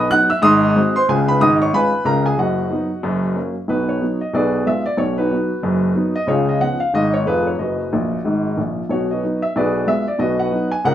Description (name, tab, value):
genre	jazz, stride piano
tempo	184 BPM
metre	4/4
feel	swing 60% on 8ths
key	B major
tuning	A4 = 440 Hz
part	warm upright piano	solo	0.0-10.9 s	E#1 to F#6	-16 LUFS	equal	none
room	wet club reverb, RT60 0.9 s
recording	heard from further back in the room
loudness	-16 LUFS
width	side -11 dB against mid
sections	0.0-3.7 A section; 3.7-10.9 B section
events	upright piano fill 7.9-8.9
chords	0.4 G#7; 1.1 C#7; 2.4 B/F#; 3.0 F#; 3.7 B; 4.3 Bdim7; 5.0 B; 6.3 C#7; 7.6 B/F#; 8.2 F#; 8.9 B; 9.5 Bdim7; 10.2 B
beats	0.11 0.43 0.76 | 1.08 1.41 1.73 2.06 | 2.38 2.71 3.03 3.36 | 3.68 4.01 4.34 4.66 | 4.99 5.31 5.64 5.97 | 6.29 6.62 6.95 7.27 | 7.60 7.92 8.25 8.57 | 8.90 9.22 9.55 9.88 | 10.20 10.53 10.85